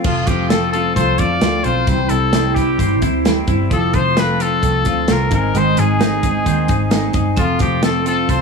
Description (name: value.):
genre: jangly indie pop.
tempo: 131 BPM.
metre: 4/4.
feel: straight.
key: unclear.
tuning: A4 = 439 Hz.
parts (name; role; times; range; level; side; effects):
picked steel-string acoustic guitar; accompaniment; 0.0-8.4 s; Ab2 to F4; -21 LUFS; right 7 dB; plate reverb.
clean electric guitar; arpeggios; 0.0-8.4 s; C3 to C5; -22 LUFS; left 6 dB; analog chorus, analog delay.
modern studio drum kit; drums; 0.0-8.4 s; crash cymbal, hi-hat, kick drum, snare drum; -20 LUFS; equal; none.
clear trumpet; melody; 0.1-8.4 s; F4 to D5; -20 LUFS; left 3 dB; plate reverb, analog delay.
vintage muted picked electric bass; bass; 0.1-8.4 s; F1 to F2; -21 LUFS; equal; none.
vibraphone with hard mallets; second line; 7.4-8.4 s; C4; -24 LUFS; right 3 dB; plate reverb.
room: light reverb.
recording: none.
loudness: -14 LUFS.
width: side -4 dB against mid.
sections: 0.0-8.4 A section.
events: none.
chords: 0.0 F; 1.9 C; 3.7 F; 5.3 Ab; 7.4 F.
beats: | 0.04 0.50 0.96 1.42 | 1.88 2.34 2.80 3.26 | 3.72 4.17 4.63 5.09 | 5.55 6.01 6.46 6.92 | 7.38 7.83 8.29.